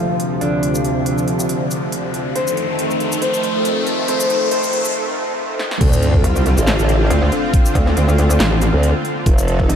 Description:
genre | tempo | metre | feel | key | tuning
heavy wobble dubstep | 139 BPM | 4/4 | swing 55% on 16ths, half-time | D phrygian | A4 = 437 Hz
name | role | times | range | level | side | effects
clear concert grand piano | melody | 0.0-4.9 s | D3 to C5 | -22 LUFS | left 1 dB | wide subtle chorus, ping-pong delay
supersaw pad | sustained chords | 0.0-9.8 s | D2 to A4 | -20 LUFS | equal | ensemble chorus, sidechain pumping, low-pass filter
riser and sub drop | sound effects | 0.9-7.5 s | none | -26 LUFS | left 1 dB | none
big-room dance drum kit | drums | 0.2-9.8 s | crash cymbal, handclaps, hi-hat, shaker, snare drum | -25 LUFS | equal | overdrive
formant-sweep wobble bass | bass | 5.8-9.7 s | F1 to D2 | -16 LUFS | equal | chorus, overdrive
electronic kick drum | drums | 5.8-9.7 s | none | -14 LUFS | equal | none
metallic wobble bass | bass | 6.2-9.8 s | Eb1 to D2 | -15 LUFS | equal | chorus, overdrive
room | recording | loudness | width
moderate huge ambient reverb, RT60 8.3 s | dreamy mix soaked in reverb, high-pass filter | -14 LUFS | side -8 dB against mid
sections
0.0-5.8 A section; 5.8-9.8 B section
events
build-up 0.0-5.8; filter sweep on supersaw synth 0.0-5.8; filter sweep 0.0-5.8; riser 0.9-4.9; break 4.9-5.8; drum fill 5.6; drop 5.8-9.8; impact 5.8-7.5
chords
0.0 Dm7; 2.4 F7; 5.8 Dm7

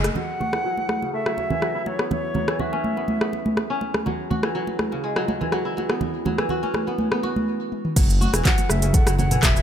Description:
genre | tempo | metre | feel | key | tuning
afro house | 123 BPM | 4/4 | straight | F# minor | A4 = 440 Hz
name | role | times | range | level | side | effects
kora | arpeggios | 0.0-9.6 s | C#3 to F#4 | -26 LUFS | equal | sidechain pumping, low-pass filter, digital delay
smooth gliding synth bass | bass | 0.0-0.1, 8.0-9.6 s | E1 to F#1 | -22 LUFS | equal | sidechain pumping
afro-pop drum kit | drums | 0.0-9.6 s | crash cymbal, handclaps, hi-hat, rim click, shaker, toms | -26 LUFS | equal | none
congas | percussion | 0.0-9.5 s | none | -27 LUFS | right 2 dB | none
silver concert flute | melody | 0.2-3.8, 8.5-9.6 s | C#5 to F#5 | -28 LUFS | left 1 dB | digital delay
electronic kick drum | drums | 8.0-9.5 s | none | -19 LUFS | equal | none
room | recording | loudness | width
light reverb, digital ambience | none | -20 LUFS | side -9 dB against mid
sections
0.2-8.0 A section; 8.0-9.6 B section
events
filter sweep on kora 0.2-8.0; break 7.5-8.0; drum fill 7.7; drop 8.0-9.6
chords
0.2 F#m7; 4.1 E; 8.0 F#m7

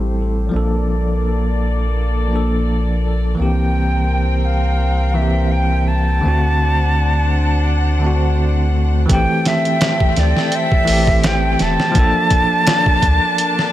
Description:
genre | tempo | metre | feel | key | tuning
trip hop | 84 BPM | 4/4 | swing 55% on 16ths | A phrygian | A4 = 440 Hz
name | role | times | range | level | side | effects
bell-like tine electric piano | accompaniment | 0.0-13.7 s | D3 to A4 | -20 LUFS | equal | medium stereo tremolo, vintage 12-bit sampler grit, tape echo
warm studio string section | sustained chords | 0.0-13.7 s | A3 to A5 | -25 LUFS | left 2 dB | low-pass filter
soft dub sub bass | bass | 0.0-13.2 s | E1 to D2 | -17 LUFS | equal | none
jazz flute | melody | 3.4-13.7 s | D5 to A5 | -19 LUFS | right 1 dB | tape echo
trip hop sampler-style drum kit | drums | 9.1-13.7 s | hi-hat, kick drum, snare drum | -18 LUFS | equal | small room ambience, dub echo
room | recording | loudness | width
digital ambience | echo-heavy mix | -14 LUFS | side -13 dB against mid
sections
0.0-9.1 A section; 9.1-13.7 B section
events
filter sweep on string section 0.0-9.1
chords
0.0 Am7; 0.5 Bbmaj7; 3.4 C7; 6.2 D7; 9.1 Am7; 11.9 Bbmaj7

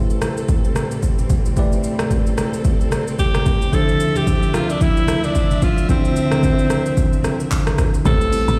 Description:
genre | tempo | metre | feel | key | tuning
amapiano | 111 BPM | 4/4 | swing 58% on 16ths | A minor | A4 = 440 Hz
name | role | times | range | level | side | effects
bell-like tine electric piano | accompaniment | 0.0-8.6 s | D3 to D5 | -25 LUFS | equal | none
warm studio string section | sustained chords | 0.0-8.6 s | D2 to E5 | -29 LUFS | equal | none
deep house drum kit | drums | 0.1-8.6 s | handclaps, hi-hat, kick drum, rim click, shaker | -21 LUFS | equal | overdrive
congas | percussion | 0.2-8.6 s | none | -28 LUFS | equal | none
bright alto saxophone | melody | 3.2-8.6 s | C4 to A4 | -24 LUFS | equal | delay
woody log drum bass | bass | 8.1-8.6 s | A1 | -21 LUFS | equal | none
impact | sound effects | 8.2-8.6 s | none | -27 LUFS | equal | none
room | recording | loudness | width
light reverb, digital ambience | played on a big sound system in a bare room, stone room reverb | -18 LUFS | mono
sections
0.0-8.1 A section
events
impact 8.1-8.6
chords
0.0 Am7; 3.7 Dm9; 8.1 Am7

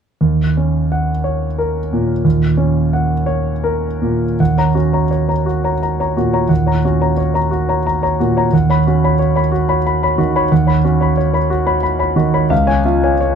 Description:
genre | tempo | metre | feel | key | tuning
neoclassical minimalist piano | 89 BPM | 3/4 | rubato | Eb minor | A4 = 438 Hz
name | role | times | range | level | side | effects
clear concert grand piano | solo | 0.2-13.4 s | Db2 to B5 | -13 LUFS | right 1 dB | none
room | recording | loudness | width
light reverb | dark, warm production | -13 LUFS | side -7 dB against mid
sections
0.2-4.4 A section; 4.4-13.4 B section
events
none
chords
0.2 Ebm7; 8.5 Badd9/D#; 12.5 Db

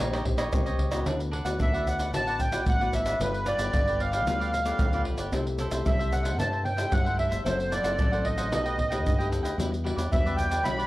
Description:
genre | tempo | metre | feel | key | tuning
samba and choro | 113 BPM | 4/4 | straight | D major | A4 = 439 Hz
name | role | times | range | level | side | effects
cavaquinho | accompaniment | 0.0-10.9 s | D4 to G5 | -36 LUFS | right 1 dB | none
nylon-string guitar | accompaniment | 0.0-10.9 s | Bb2 to C5 | -34 LUFS | left 4 dB | none
fingered electric bass | bass | 0.0-10.9 s | F#1 to G2 | -31 LUFS | equal | none
egg shaker, pandeiro, tamborim and surdo | percussion | 0.1-10.9 s | none | -29 LUFS | equal | none
accordion | melody | 1.6-10.9 s | B4 to B5 | -28 LUFS | right 1 dB | light tremolo tuning, plate reverb
room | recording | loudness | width
light reverb | worn, warbling old tape, cassette tape, warbly pitch drift | -24 LUFS | side -17 dB against mid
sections
0.0-1.1 A section; 1.1-10.9 B section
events
none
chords
0.0 Eb6; 1.1 D69; 3.2 G9; 5.3 C6; 7.5 F#m7b5; 8.5 B7b13; 9.6 Em9

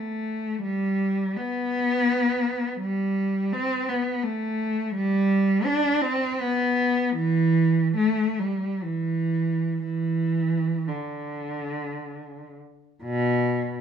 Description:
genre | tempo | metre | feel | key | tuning
classical, free, expressive piece for unaccompanied cello | 42-86 BPM | 3/4 | rubato | G major | A4 = 440 Hz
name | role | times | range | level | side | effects
warm cello | solo | 0.0-13.8 s | B2 to D4 | -23 LUFS | equal | none
room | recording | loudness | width
light reverb | minimal, uncompressed stereo recording | -22 LUFS | side -8 dB against mid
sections
0.0-13.0 A section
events
none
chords
none

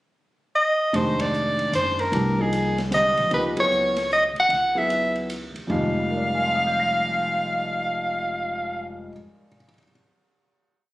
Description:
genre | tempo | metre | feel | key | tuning
modal jazz | 151 BPM | 3/4 | swing 65% on 8ths | F dorian | A4 = 440 Hz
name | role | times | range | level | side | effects
breathy soprano saxophone | melody | 0.6-8.9 s | Ab4 to Gb5 | -22 LUFS | equal | none
warm concert grand piano | accompaniment | 0.9-9.9 s | F2 to Bb6 | -28 LUFS | equal | none
upright bass | bass | 0.9-9.1 s | F1 to Db2 | -30 LUFS | equal | none
open jazz drum kit | drums | 0.9-5.8 s | hi-hat, kick drum, ride cymbal, snare drum, toms | -37 LUFS | right 2 dB | none
room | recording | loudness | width
light reverb | recorded on a phone in the room, studio reverb, compression | -20 LUFS | side -17 dB against mid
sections
0.0-0.9 pickup bar; 0.9-5.7 A section; 5.7-8.1 final chord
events
band accent 1.1, 3.5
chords
0.0 N.C.; 0.9 Fm9; 3.3 Dbm7; 5.7 Fm9

